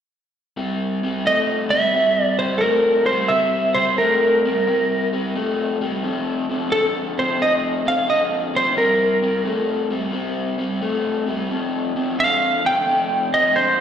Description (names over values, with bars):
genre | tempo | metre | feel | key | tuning
blues | 88 BPM | 4/4 | swing 67% on 8ths | C mixolydian | A4 = 438 Hz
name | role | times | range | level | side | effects
raw garage guitar | riff | 0.6-13.8 s | F2 to A3 | -22 LUFS | left 2 dB | overdrive, slapback echo
lightly driven lead guitar | melody | 1.3-13.8 s | A4 to G5 | -17 LUFS | right 1 dB | slapback echo
room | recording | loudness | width
moderate lush hall reverb, RT60 2.7 s | live gig heard through the venue's PA, recital hall reverb | -17 LUFS | side -8 dB against mid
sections
0.6-13.8 A section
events
none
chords
0.6 C7; 6.0 F5; 8.8 C5; 11.5 Fsus2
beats
| 0.57 1.25 1.94 2.62 | 3.30 3.98 4.67 5.35 | 6.03 6.72 7.40 8.08 | 8.77 9.45 10.13 10.82 | 11.50 12.18 12.87 13.55